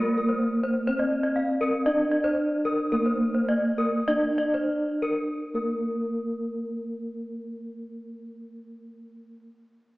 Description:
gamelan; 45-68 BPM; 4/4; straight; A4 = 435 Hz
gamelan-type bronze metallophone; melody; 0.0-9.5 s; Bb3 to Eb4-35c; -27 LUFS; equal
gamelan-type bronze metallophone; arpeggios; 0.0-9.5 s; Bb4 to F5+25c; -28 LUFS; left 1 dB
wet scoring stage reverb, RT60 1.9 s; heard from further back in the room, small speaker sound; -23 LUFS; side -20 dB against mid
0.0-5.3 A section; 5.3-10.0 B section
slowing down 0.0-5.3

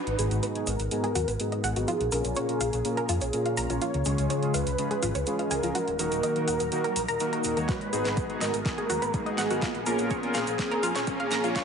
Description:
progressive house; 124 BPM; 4/4; straight; G# dorian; A4 = 442 Hz
wide unison lead; melody; 0.0-11.6 s; G#4 to C#5; -31 LUFS; equal; ensemble chorus, sidechain pumping, tape echo
analog pluck; arpeggios; 0.0-11.6 s; E#4 to A#5; -33 LUFS; equal; chorus, sidechain pumping, dub echo
riser; sound effects; 0.0-11.6 s; -39 LUFS; right 2 dB
dark detuned saw bass; bass; 0.1-11.5 s; D#1 to E#2; -32 LUFS; equal; sidechain pumping
pop drum kit; drums; 0.1-11.6 s; hi-hat, snare drum; -35 LUFS; right 1 dB; sidechain pumping on hats, high-pass filter on hats, studio reverb, high-pass filter on snare
soft supersaw; stabs; 0.2-11.5 s; G#2 to C#5; -30 LUFS; equal; sidechain pumping, low-pass filter, dub echo
tube shaker; percussion; 0.2-11.6 s; -40 LUFS; equal
electronic kick drum; drums; 7.7-11.6 s; -32 LUFS; equal; overdrive, studio reverb
moderate digital room reverb, RT60 1.1 s; high-pass filter, nothing above 10.5 kHz; -25 LUFS; side -6 dB against mid
0.0-11.6 A section
build-up 0.0-11.6; riser 0.0-11.6; filter sweep on synth arpeggio sound 0.0-11.6; filter sweep on supersaw synth 0.0-11.6; filter sweep on analog synth lead 0.0-11.6; drum fill 7.7-11.6
0.0 G#m7; 1.9 A#m; 3.8 C#; 5.8 D#m; 7.7 G#m7; 9.6 A#m

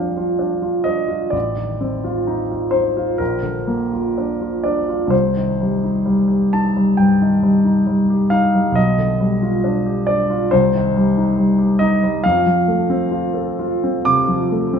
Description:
classical, romantic nocturne for solo piano; 60-70 BPM; 4/4; rubato; Bb major; A4 = 443 Hz
warm baby grand piano; solo; 0.0-14.8 s; A1 to D6; -15 LUFS; equal
wet stone room reverb, RT60 1.3 s; -15 LUFS; side -7 dB against mid
0.0-14.8 A section
0.0 Bb; 1.3 F7/A; 3.2 Bb; 5.1 Cm; 8.8 G7/B; 10.5 Cm; 12.2 F

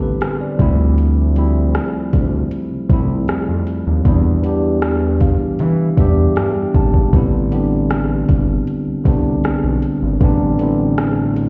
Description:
contemporary R&B; 78 BPM; 4/4; straight; A minor; A4 = 440 Hz
bright tine electric piano; accompaniment; 0.0-11.5 s; D3 to A5; -20 LUFS; equal
smooth gliding synth bass; bass; 0.0-11.5 s; G1 to E3; -20 LUFS; equal
smooth R&B drum kit; drums; 0.2-11.5 s; hi-hat, kick drum, rim click; -20 LUFS; equal; vintage 12-bit sampler grit
light reverb; heard muffled through a wall, stone room reverb, EQ, nothing above 8.0 kHz; -16 LUFS; mono
0.0-11.5 A section
tine electric piano fill 4.8-7.1
0.0 Am11; 0.6 Dm11; 4.1 Em7; 7.1 Am11

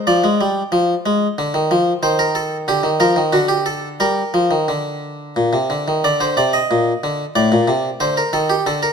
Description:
classical, baroque-style two-part invention for harpsichord; 91 BPM; 3/4; straight; G minor; A4 = 440 Hz
harpsichord; solo; 0.0-8.9 s; A2 to Eb5; -15 LUFS; equal
moderate recital hall reverb, RT60 1.5 s; close, detailed microphones; -15 LUFS; side -6 dB against mid
0.0-6.0 A section; 6.0-8.9 B section
0.1 Ddim/F; 1.4 Dm; 2.0 Eb; 3.3 D; 4.0 Gm (rootless); 6.0 Bbadd11; 7.4 Amadd11; 8.0 D5

